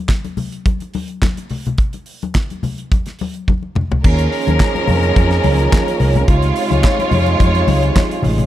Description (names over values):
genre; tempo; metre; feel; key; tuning
disco; 107 BPM; 4/4; straight; unclear; A4 = 440 Hz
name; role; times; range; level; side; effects
damped 70s drum kit; drums; 0.1-8.5 s; crash cymbal, handclaps, hi-hat, kick drum, snare drum, toms; -16 LUFS; equal; none
congas; percussion; 0.2-8.5 s; none; -23 LUFS; left 4 dB; none
clear studio string section; second line; 4.0-8.5 s; F3 to Db5; -18 LUFS; right 1 dB; none
mellow French horn section; sustained chords; 4.0-8.5 s; C3 to Ab4; -22 LUFS; right 3 dB; none
fingered electric bass; bass; 4.0-8.4 s; A1 to F2; -15 LUFS; equal; none
room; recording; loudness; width
little or no reverb; dark, warm production; -14 LUFS; side -13 dB against mid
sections
0.0-4.0 A section; 4.0-8.5 B section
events
drum fill 3.5-4.0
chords
0.0 N.C.; 4.0 Eb9sus4; 6.3 Dbmaj7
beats
0.09 0.65 1.22 | 1.78 2.35 2.91 3.48 | 4.04 4.60 5.16 5.72 | 6.28 6.84 7.40 7.96